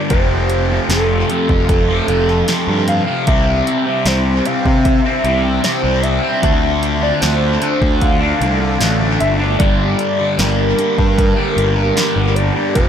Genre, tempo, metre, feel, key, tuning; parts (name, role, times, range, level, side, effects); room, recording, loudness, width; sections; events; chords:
psychedelic rock; 76 BPM; 4/4; straight; G dorian; A4 = 440 Hz
hollow square lead; melody; 0.0-12.9 s; A4 to F5; -20 LUFS; equal; chorus, dub echo
rich studio string section; sustained chords; 0.0-12.9 s; E3 to G4; -28 LUFS; right 7 dB
fuzz guitar; riff; 0.0-12.9 s; F2 to D4; -17 LUFS; left 1 dB; distortion, phaser, dub echo
fuzz picked electric bass; bass; 0.1-12.9 s; F1 to C3; -18 LUFS; equal; overdrive
punchy analog drum machine; drums; 0.1-12.9 s; hi-hat, kick drum, snare drum; -18 LUFS; equal; dub echo
little or no reverb; echo-heavy mix; -13 LUFS; side -8 dB against mid
0.0-12.9 A section
0.1 Fadd9; 3.3 Cadd9; 6.4 Dm7; 9.6 Gm